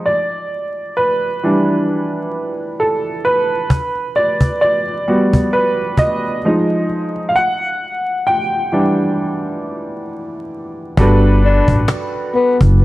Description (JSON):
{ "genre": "lo-fi hip hop", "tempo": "66 BPM", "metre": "4/4", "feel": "swing 57% on 16ths", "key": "G major", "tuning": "A4 = 439 Hz", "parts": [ { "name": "clear upright piano", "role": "accompaniment", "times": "0.0-12.8 s", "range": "E3 to G5", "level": "-16 LUFS", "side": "right 1 dB", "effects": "cassette tape, low-pass filter" }, { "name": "cajon", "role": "drums", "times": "3.7-12.8 s", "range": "none", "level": "-16 LUFS", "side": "equal", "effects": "none" }, { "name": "upright bass", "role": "bass", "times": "11.0-12.8 s", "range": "F#1 to A1", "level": "-12 LUFS", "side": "equal", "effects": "none" }, { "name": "breathy tenor saxophone", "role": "melody", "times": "11.4-12.6 s", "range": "B3 to D4", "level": "-16 LUFS", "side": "left 3 dB", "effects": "low-pass filter" }, { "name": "finger snaps", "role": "percussion", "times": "11.9-12.1 s", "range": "none", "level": "-33 LUFS", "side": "left 10 dB", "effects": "none" } ], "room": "light reverb, small room ambience", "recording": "vinyl crackle", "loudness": "-14 LUFS", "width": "side -17 dB against mid", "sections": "0.0-11.0 A section; 11.0-12.8 B section", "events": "upright piano solo 0.0-11.0; break 7.3-11.0", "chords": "0.1 Em7; 3.7 Gmaj7; 6.4 Fm7; 7.3 Em9; 11.0 Gmaj9" }